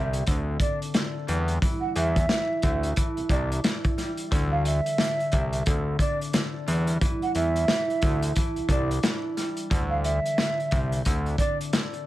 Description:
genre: hip hop, boom-bap hip-hop.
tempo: 89 BPM.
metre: 4/4.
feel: swing 61% on 16ths.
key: unclear.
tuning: A4 = 439 Hz.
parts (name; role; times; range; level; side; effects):
breathy mellow concert flute; melody; 0.0-11.6 s; D5 to F#5; -30 LUFS; right 2 dB; high-pass filter, low-pass filter, ping-pong delay.
concert harp; accompaniment; 0.0-12.1 s; D3 to D4; -31 LUFS; left 1 dB; cassette tape, high-pass filter, low-pass filter.
fat analog bass; bass; 0.0-11.4 s; C2 to E2; -26 LUFS; equal; none.
crunchy breakbeat drum kit; drums; 0.1-12.1 s; hi-hat, kick drum, snare drum; -26 LUFS; equal; none.
room: light reverb.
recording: none.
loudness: -23 LUFS.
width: side -15 dB against mid.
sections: 0.0-12.1 A section.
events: none.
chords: 0.0 D5; 1.3 Em7; 4.3 Dsus2; 6.7 Em7; 9.7 Dsus2.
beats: 0.27 0.95 | 1.62 2.29 2.97 3.64 | 4.32 4.99 5.67 6.34 | 7.01 7.69 8.36 9.04 | 9.71 10.38 11.06 11.73.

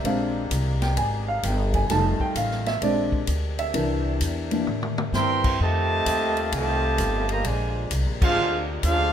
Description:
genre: jazz, big band swing.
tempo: 130 BPM.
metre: 4/4.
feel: swing 66% on 8ths.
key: unclear.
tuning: A4 = 440 Hz.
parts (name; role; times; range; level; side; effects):
dark baby grand piano; accompaniment; 0.0-5.6 s; E3 to A5; -25 LUFS; equal; none.
mellow saxophone section; sustained chords; 0.0-9.1 s; C3 to Bb4; -35 LUFS; left 2 dB; none.
upright bass; bass; 0.0-9.1 s; F1 to A2; -26 LUFS; equal; none.
swinging big-band drum kit; drums; 0.0-9.0 s; crash cymbal, hi-hat, kick drum, ride cymbal, snare drum, toms; -30 LUFS; left 1 dB; none.
mellow trumpet section; melody; 5.1-9.1 s; D4 to C6; -25 LUFS; right 1 dB; none.
dark trombone section; second line; 5.1-9.1 s; C3 to F4; -28 LUFS; right 3 dB; none.
room: light reverb.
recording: minimal, uncompressed stereo recording.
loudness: -21 LUFS.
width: side -9 dB against mid.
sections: 0.0-5.6 A section; 5.6-9.1 B section.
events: grand piano solo 0.0-5.6; drum fill 4.7-5.1; band accent 8.1.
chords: 0.0 Bb9; 1.9 F9; 2.8 Bb9; 3.7 C9; 5.6 F9; 7.4 Bb9.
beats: | 0.04 0.51 0.97 1.43 | 1.89 2.35 2.82 3.28 | 3.74 4.21 4.67 5.13 | 5.59 6.05 6.52 6.98 | 7.44 7.91 8.37 8.83.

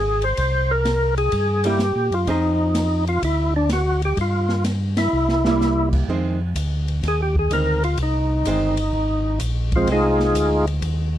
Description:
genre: soul jazz organ trio.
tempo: 126 BPM.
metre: 4/4.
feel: swing 68% on 8ths.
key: F dorian.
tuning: A4 = 440 Hz.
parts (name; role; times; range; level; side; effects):
percussive tonewheel organ; melody; 0.0-10.7 s; F3 to C5; -20 LUFS; equal; slow rotary speaker, overdrive, chorus vibrato.
mellow tonewheel organ; bass; 0.0-11.2 s; G1 to Bb2; -22 LUFS; equal; overdrive, chorus vibrato, slow rotary speaker.
open jazz drum kit; drums; 0.2-11.0 s; crash cymbal, hi-hat, kick drum, ride cymbal, snare drum; -28 LUFS; equal; none.
archtop guitar, miked and amplified; accompaniment; 1.6-11.2 s; Eb3 to Ab4; -25 LUFS; right 4 dB; none.
room: little or no reverb.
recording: dry, close 1970s-style studio recording, lossy compression artefacts.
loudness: -18 LUFS.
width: side -12 dB against mid.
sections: 0.0-6.1 A section; 6.1-11.2 B section.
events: band accent 4.9; drum fill 5.1-5.6; tonewheel organ solo 6.1-11.2.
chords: 0.4 C7(no3); 2.3 Fm7; 3.2 Dadd9; 4.2 Em/G; 5.1 C7; 6.1 Fm7.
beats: | 0.39 0.86 1.33 1.81 | 2.28 2.76 3.23 3.71 | 4.18 4.66 5.13 5.61 | 6.08 6.56 7.03 7.51 | 7.98 8.46 8.93 9.41 | 9.88 10.36 10.83.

